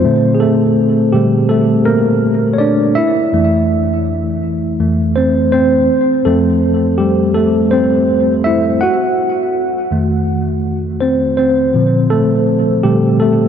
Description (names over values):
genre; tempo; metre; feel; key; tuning
hip hop; 82 BPM; 4/4; swing 64% on 16ths; F major; A4 = 439 Hz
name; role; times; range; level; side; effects
tine electric piano; solo; 0.0-13.5 s; F2 to Gb5; -11 LUFS; equal; medium stereo tremolo, cassette tape, tape echo
room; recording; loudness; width
wet huge ambient reverb, RT60 4.1 s; dreamy mix soaked in reverb; -11 LUFS; side -8 dB against mid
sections
0.0-13.5 A section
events
tine electric piano solo 0.0-13.5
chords
0.0 Bbmaj9; 3.0 Fmaj7; 5.9 Fmaj9; 8.8 F7b9; 11.7 Bbmaj9